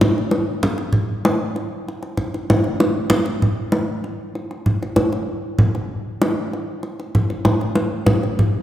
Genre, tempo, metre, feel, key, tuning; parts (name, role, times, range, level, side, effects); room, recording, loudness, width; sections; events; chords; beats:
gamelan; 97 BPM; 4/4; straight
kendang; percussion; 0.0-8.5 s; -18 LUFS; equal
wet concert hall reverb, RT60 2.0 s; -18 LUFS; side -12 dB against mid
0.0-8.6 A section
0.02 | 0.64 1.26 1.88 2.50 | 3.12 3.74 4.36 4.98 | 5.60 6.22 6.84 7.46 | 8.08